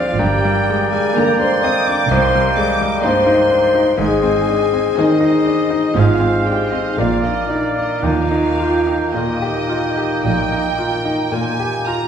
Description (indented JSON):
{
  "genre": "classical, romantic movement for piano and orchestra",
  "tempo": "53-65 BPM",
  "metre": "4/4",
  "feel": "rubato",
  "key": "Eb major",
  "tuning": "A4 = 440 Hz",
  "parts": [
    { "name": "bright grand piano", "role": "melody", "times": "0.0-12.1 s", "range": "C2 to G4", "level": "-20 LUFS", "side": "left 1 dB", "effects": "none" },
    { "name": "rich studio violin section", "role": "melody", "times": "0.0-11.3 s", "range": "D5 to Eb6", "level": "-27 LUFS", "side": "left 2 dB", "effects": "none" },
    { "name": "clear clarinet", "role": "second line", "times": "0.0-12.0 s", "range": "C5 to Eb5", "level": "-26 LUFS", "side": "equal", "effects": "none" },
    { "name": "mellow cor anglais", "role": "second line", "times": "0.0-12.0 s", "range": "Eb5 to G5", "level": "-24 LUFS", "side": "right 2 dB", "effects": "none" },
    { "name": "mellow bassoon", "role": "accompaniment", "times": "0.0-12.0 s", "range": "Ab3 to C4", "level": "-24 LUFS", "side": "right 2 dB", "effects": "none" },
    { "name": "dark French horn section", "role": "sustained chords", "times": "0.0-11.3 s", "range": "D4 to Eb5", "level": "-19 LUFS", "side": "left 2 dB", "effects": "none" },
    { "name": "rich studio cello section", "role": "bass", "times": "0.2-11.1 s", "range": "G2 to Eb3", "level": "-24 LUFS", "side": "right 3 dB", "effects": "none" },
    { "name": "rich studio double bass section", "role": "bass", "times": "0.2-11.1 s", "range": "G1 to Eb2", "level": "-23 LUFS", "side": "right 3 dB", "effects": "none" },
    { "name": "warm studio viola section", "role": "accompaniment", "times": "1.1-12.1 s", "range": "Ab3 to Bb4", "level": "-26 LUFS", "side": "right 2 dB", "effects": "none" },
    { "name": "rich studio violin section", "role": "second line", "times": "1.2-12.1 s", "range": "C5 to Bb5", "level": "-27 LUFS", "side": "right 1 dB", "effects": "none" }
  ],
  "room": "wet recital hall reverb, RT60 1.7 s",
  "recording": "heard from further back in the room",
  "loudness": "-14 LUFS",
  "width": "side -8 dB against mid",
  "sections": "0.0-12.1 A section",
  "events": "none",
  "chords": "0.2 Gm; 2.1 Cm7; 4.0 Ab; 6.0 Fm/Ab; 7.0 Bb; 8.0 Eb",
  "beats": "| 0.20 1.15 2.10 3.03 | 4.00 4.98 5.96 6.98 | 8.04 9.13 10.24 11.32"
}